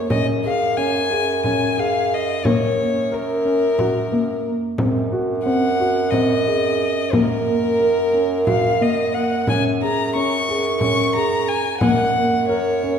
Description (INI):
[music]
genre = contemporary instrumental, chamber music in an uneven meter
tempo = 179 BPM (eighths)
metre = 7/8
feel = straight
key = Gb lydian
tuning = A4 = 439 Hz
[part]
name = dark violin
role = melody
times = 0.0-13.0 s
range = Bb4 to Db6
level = -21 LUFS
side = left 2 dB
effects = none
[part]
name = clear bass clarinet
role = bass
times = 0.0-13.0 s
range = Gb2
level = -23 LUFS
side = right 2 dB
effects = none
[part]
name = dark concert grand piano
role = arpeggios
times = 0.1-13.0 s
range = Bb3 to Bb4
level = -22 LUFS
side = left 1 dB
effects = none
[part]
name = frame drum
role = percussion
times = 0.1-12.3 s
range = none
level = -25 LUFS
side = equal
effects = none
[sound]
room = wet scoring stage reverb, RT60 1.7 s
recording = recorded in a church or concert hall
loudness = -17 LUFS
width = side -7 dB against mid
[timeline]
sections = 0.1-13.0 A section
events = none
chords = 0.1 Db5/Gb; 2.4 Gb; 4.8 Ab7/Gb; 7.1 Gb; 9.5 Db5/Gb; 11.8 Gb